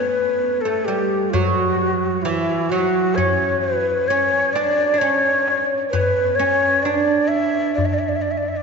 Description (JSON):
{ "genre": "Turkish makam ensemble", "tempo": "130 BPM (eighths)", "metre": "10/8", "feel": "straight", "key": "unclear", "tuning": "A4 = 441 Hz", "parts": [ { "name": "breathy ney", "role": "melody", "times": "0.0-8.6 s", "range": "E4 to E5", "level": "-18 LUFS", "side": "left 1 dB", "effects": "none" }, { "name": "oud", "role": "second line", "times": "0.0-7.7 s", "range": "E3 to D4", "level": "-23 LUFS", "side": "right 4 dB", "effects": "none" }, { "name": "darbuka", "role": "percussion", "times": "0.9-8.4 s", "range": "none", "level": "-28 LUFS", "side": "left 4 dB", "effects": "none" } ], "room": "wet cathedral reverb, RT60 4.7 s", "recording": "recorded in a church or concert hall, nothing above 7.6 kHz", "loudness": "-17 LUFS", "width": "side -5 dB against mid", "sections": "0.0-8.6 A section", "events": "none", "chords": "none", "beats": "0.41 0.87 1.33 1.79 2.25 2.71 | 3.17 3.63 4.09 4.55 5.01 5.47 5.93 6.39 6.85 7.31 | 7.77 8.23" }